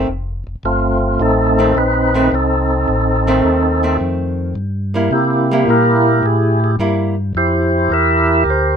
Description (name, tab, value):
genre	jazz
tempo	107 BPM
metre	4/4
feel	swing 69% on 8ths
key	unclear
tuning	A4 = 442 Hz
part	archtop guitar, miked and amplified	accompaniment	0.0-7.1 s	Eb3 to E4	-18 LUFS	right 1 dB	none
part	mellow tonewheel organ	bass	0.0-8.8 s	F1 to C3	-18 LUFS	left 1 dB	slow rotary speaker
part	percussive tonewheel organ	melody	0.7-8.8 s	A3 to E5	-14 LUFS	right 1 dB	slow rotary speaker
room	light reverb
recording	minimal, uncompressed stereo recording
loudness	-13 LUFS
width	side -7 dB against mid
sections	0.0-8.8 A section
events	none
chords	0.1 F7; 4.6 C7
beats	| 0.08 0.64 1.20 1.76 | 2.32 2.88 3.44 4.00 | 4.55 5.11 5.67 6.23 | 6.79 7.35 7.90 8.46